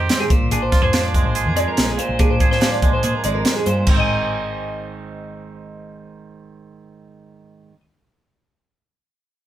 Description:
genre	math rock and midwest emo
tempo	143 BPM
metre	4/4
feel	straight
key	Ab lydian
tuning	A4 = 441 Hz
part	twangy electric guitar	accompaniment	0.0-7.8 s	F2 to Ab4	-25 LUFS	right 4 dB	none
part	twelve-string electric guitar	arpeggios	0.0-7.8 s	Ab4 to Ab5	-23 LUFS	left 1 dB	none
part	hollow-body short-scale fingered electric bass	bass	0.0-7.7 s	Ab1 to Bb2	-25 LUFS	equal	none
part	crisp fusion drum kit	drums	0.1-4.0 s	crash cymbal, hi-hat, kick drum, snare drum	-18 LUFS	equal	none
room	light reverb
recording	band playing live in one room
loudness	-16 LUFS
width	side -12 dB against mid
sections	0.0-3.9 A section; 3.9-7.2 B section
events	none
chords	0.3 Bb7; 3.9 Ab

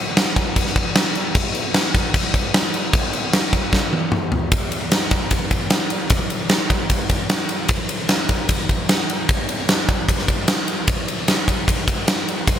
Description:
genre	rock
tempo	151 BPM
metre	4/4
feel	straight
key	none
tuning	none
part	huge arena drum kit	drums	0.2-12.6 s	crash cymbal, kick drum, ride cymbal, snare drum, toms	-17 LUFS	equal	gated reverb
room	light reverb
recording	bright 1980s-style digital production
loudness	-17 LUFS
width	side -10 dB against mid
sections	0.0-4.5 A section; 4.5-12.6 B section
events	drum fill 3.7-4.5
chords	none

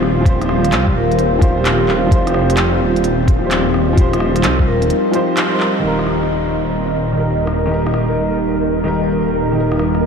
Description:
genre	future garage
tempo	129 BPM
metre	4/4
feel	swing 67% on 16ths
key	unclear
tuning	A4 = 440 Hz
part	clear upright piano	accompaniment	0.0-10.1 s	Eb3 to C5	-20 LUFS	equal	sidechain pumping, diffuse ambient delay
part	warbly tape-like pad	sustained chords	0.0-10.1 s	G3 to F5	-19 LUFS	right 1 dB	chorus, built-in reverb, phaser, sidechain pumping
part	swelling detuned saw bass	bass	0.0-10.1 s	Eb1 to C2	-19 LUFS	equal	sidechain pumping
part	organic electronic drum kit	drums	0.0-10.0 s	handclaps, hi-hat, rim click	-23 LUFS	equal	none
part	electronic kick drum	drums	0.3-4.7 s	none	-13 LUFS	equal	none
part	vibraphone with medium mallets	melody	1.0-4.9 s	G4 to Bb4	-25 LUFS	left 1 dB	tape echo
part	flickering grainy texture	texture	6.9-10.1 s	Bb4	-28 LUFS	right 1 dB	none
room	wet huge ambient reverb, RT60 8.1 s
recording	dreamy mix soaked in reverb, cassette tape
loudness	-13 LUFS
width	side -6 dB against mid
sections	0.0-5.8 A section; 5.8-10.1 B section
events	band accent 5.4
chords	0.0 Fsus2; 5.8 Eb

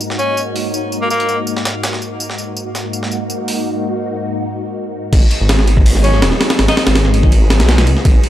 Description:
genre	drum and bass, jungle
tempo	164 BPM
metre	4/4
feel	straight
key	G# minor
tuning	A4 = 440 Hz
part	soft string machine	sustained chords	0.0-8.3 s	G#2 to G#4	-21 LUFS	left 1 dB	phaser, ensemble chorus
part	breakbeat sampler-style drum kit	drums	0.0-3.6 s	hi-hat, snare drum, tambourine	-22 LUFS	right 1 dB	high-pass filter on snare, high-pass filter on perc, high-pass filter on hats
part	bright tenor saxophone	melody	0.2-1.4, 6.0-6.8 s	A#3 to D#4	-21 LUFS	left 1 dB	dub echo
part	detuned saw bass	bass	5.1-8.1 s	D#1 to C#2	-13 LUFS	equal	none
part	breakbeat sampler-style drum kit	drums	5.1-8.3 s	crash cymbal, hi-hat, kick drum, ride cymbal, snare drum	-12 LUFS	equal	none
room	little or no reverb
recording	dry, gritty hardware recording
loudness	-13 LUFS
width	side -12 dB against mid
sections	0.0-5.1 A section; 5.1-8.3 B section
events	drop 5.1-8.3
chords	0.0 D#m/G#; 5.1 G#m7

